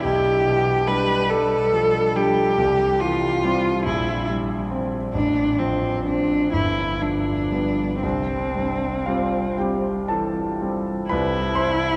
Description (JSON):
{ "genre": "classical, romantic duo for cello and grand piano", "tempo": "38-48 BPM (dotted quarters)", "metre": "6/8", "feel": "rubato", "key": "C major", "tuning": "A4 = 442 Hz", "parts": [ { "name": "rich cello", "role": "melody", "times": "0.0-12.0 s", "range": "C4 to B4", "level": "-24 LUFS", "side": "equal", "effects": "none" }, { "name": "clear concert grand piano", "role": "accompaniment", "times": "0.0-12.0 s", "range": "G1 to C6", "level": "-26 LUFS", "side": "equal", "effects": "none" } ], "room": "wet cathedral reverb, RT60 4.8 s", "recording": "recorded in a church or concert hall", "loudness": "-22 LUFS", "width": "mono", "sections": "0.0-11.1 A section", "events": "none", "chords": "0.0 G7/B; 2.6 C; 3.9 C5/Bb; 5.1 F/A; 6.5 G7; 8.0 C", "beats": "| 0.04 1.30 | 2.58 3.87 | 5.15 6.54 | 8.03 9.60 | 11.12" }